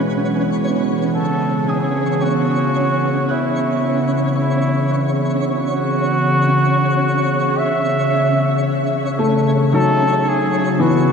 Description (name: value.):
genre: ambient.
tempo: 56 BPM.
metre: 4/4.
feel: straight.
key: unclear.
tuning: A4 = 439 Hz.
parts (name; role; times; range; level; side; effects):
clear flugelhorn; melody; 0.0-11.1 s; E4 to E5; -21 LUFS; right 1 dB; shimmer reverb, ping-pong delay.
warbly tape-like pad; sustained chords; 0.0-11.1 s; B2 to G#4; -19 LUFS; left 1 dB; chorus, built-in reverb.
felt-muted upright piano; arpeggios; 0.0-11.1 s; E3 to F#6; -22 LUFS; left 2 dB; ping-pong delay.
bowed-like drone; drone; 0.0-11.1 s; C#3 to E3; -31 LUFS; right 2 dB; none.
twinkling granular texture; texture; 0.0-11.1 s; C#4 to C#5; -23 LUFS; right 2 dB; built-in reverb, shimmer reverb.
room: wet huge ambient reverb, RT60 8.3 s.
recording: cassette tape.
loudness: -15 LUFS.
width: side -6 dB against mid.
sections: 0.0-11.1 A section.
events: none.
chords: 0.0 E; 1.2 A.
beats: 0.08 | 1.15 2.22 3.29 4.37 | 5.44 6.51 7.58 8.65 | 9.72 10.79.